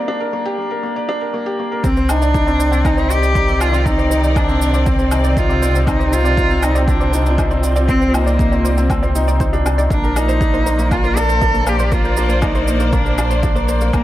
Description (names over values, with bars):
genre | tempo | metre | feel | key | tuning
piano and strings electronica | 119 BPM | 4/4 | straight | C minor | A4 = 443 Hz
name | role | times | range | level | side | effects
felt-muted upright piano | riff | 0.0-14.0 s | Bb3 to D5 | -21 LUFS | left 1 dB | none
warm cello | melody | 1.8-14.0 s | Bb3 to A4 | -20 LUFS | equal | none
dark symphonic string section | sustained chords | 1.8-14.0 s | Bb2 to D5 | -25 LUFS | left 1 dB | sidechain pumping
wide unison pluck | arpeggios | 1.8-14.0 s | Bb4 to G5 | -29 LUFS | right 2 dB | none
warm sub bass | bass | 1.8-14.0 s | G1 to C2 | -18 LUFS | equal | sidechain pumping, high-pass filter
electronic kick drum | drums | 1.8-14.0 s | none | -20 LUFS | equal | none
shaker and woodblock | drums | 1.8-14.0 s | none | -28 LUFS | left 1 dB | none
room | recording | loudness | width
light reverb | none | -14 LUFS | side -14 dB against mid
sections
0.0-1.8 A section; 1.8-14.0 B section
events
break 0.0-1.8; build-up 0.0-1.8; drop 1.8-14.0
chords
0.0 Gm; 1.8 Cmadd9; 9.9 Bbadd9